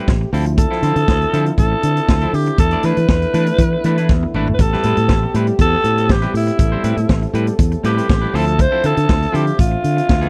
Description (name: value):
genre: disco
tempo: 120 BPM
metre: 4/4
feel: straight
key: A minor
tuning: A4 = 442 Hz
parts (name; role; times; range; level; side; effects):
- semi-hollow electric guitar; accompaniment; 0.0-10.3 s; F3 to D5; -26 LUFS; equal; none
- warm French horn section; sustained chords; 0.0-10.3 s; C3 to E5; -29 LUFS; equal; none
- fingered electric bass; bass; 0.1-10.3 s; G#1 to E3; -20 LUFS; equal; none
- vintage drum kit; drums; 0.1-10.3 s; hi-hat, kick drum, snare drum, toms; -19 LUFS; equal; none
- raspy alto saxophone; melody; 0.6-10.3 s; E4 to C5; -22 LUFS; equal; none
room: little or no reverb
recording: dry, close 1970s-style studio recording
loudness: -16 LUFS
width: mono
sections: 0.0-10.3 A section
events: drum fill 4.1-4.6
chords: 0.3 Dm9; 2.6 E7sus4; 4.6 Am9; 8.3 Dm9